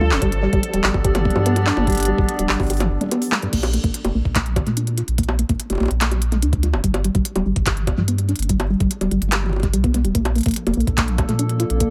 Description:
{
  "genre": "IDM",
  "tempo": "145 BPM",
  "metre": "4/4",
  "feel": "straight",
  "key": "Bb major",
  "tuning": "A4 = 441 Hz",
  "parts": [
    { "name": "warbly tape-like pad", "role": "sustained chords", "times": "0.0-3.5, 10.2-11.9 s", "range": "F3 to D5", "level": "-28 LUFS", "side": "equal", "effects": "chorus, built-in reverb" },
    { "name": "deep acid bass", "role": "arpeggios", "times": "0.0-11.9 s", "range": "G2 to G4", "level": "-26 LUFS", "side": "equal", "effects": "lush chorus, delay" },
    { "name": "warm sub bass", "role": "bass", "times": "0.0-11.9 s", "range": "D1 to Bb2", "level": "-23 LUFS", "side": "equal", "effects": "none" },
    { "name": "organic electronic drum kit", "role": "drums", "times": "0.0-11.9 s", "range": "bongos, crash cymbal, handclaps, hi-hat, toms", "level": "-26 LUFS", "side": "equal", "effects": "tape echo" },
    { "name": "bubbling stepped-filter texture", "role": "texture", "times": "0.0-3.5 s", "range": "A4", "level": "-34 LUFS", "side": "equal", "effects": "chorus, built-in reverb" },
    { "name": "electronic kick drum", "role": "drums", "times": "0.2-11.9 s", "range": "none", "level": "-25 LUFS", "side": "equal", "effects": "none" }
  ],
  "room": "light reverb",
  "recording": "none",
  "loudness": "-20 LUFS",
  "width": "mono",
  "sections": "0.0-3.5 A section; 3.5-11.9 B section",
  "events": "break 2.7-3.5",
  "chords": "0.2 G7; 3.5 Bb; 6.8 G; 10.1 Bbmaj7"
}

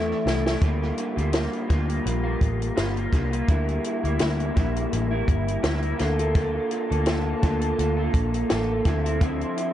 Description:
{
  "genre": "indie pop, bedroom pop",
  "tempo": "84 BPM",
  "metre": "4/4",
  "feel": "swing 55% on 16ths",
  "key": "unclear",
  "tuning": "A4 = 441 Hz",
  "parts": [
    { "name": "electric guitar through a small old amp", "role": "accompaniment", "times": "0.0-9.7 s", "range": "D3 to A4", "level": "-26 LUFS", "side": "left 1 dB", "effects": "analog chorus, vibrato effect, tape echo" },
    { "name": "hollow soft pad", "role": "sustained chords", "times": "0.0-0.6, 6.8-9.7 s", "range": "E3 to C6", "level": "-32 LUFS", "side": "right 3 dB", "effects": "chorus" },
    { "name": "vintage muted picked electric bass", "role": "bass", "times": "0.0-9.4 s", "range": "G1 to E2", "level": "-26 LUFS", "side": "equal", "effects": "none" },
    { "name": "compact cocktail drum kit", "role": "drums", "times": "0.3-9.7 s", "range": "hi-hat, kick drum, snare drum", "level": "-26 LUFS", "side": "equal", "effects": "vintage 12-bit sampler grit, tape echo" }
  ],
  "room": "light reverb, small room reverb",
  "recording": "echo-heavy mix, nothing above 10.4 kHz",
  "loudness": "-22 LUFS",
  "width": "side -12 dB against mid",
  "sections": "0.6-9.7 A section",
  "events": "drum fill 0.0-0.6",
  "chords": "0.0 Dmadd9; 0.6 Gm7/D; 3.5 Gm6; 6.0 Bbmaj7/D; 8.9 Dm9"
}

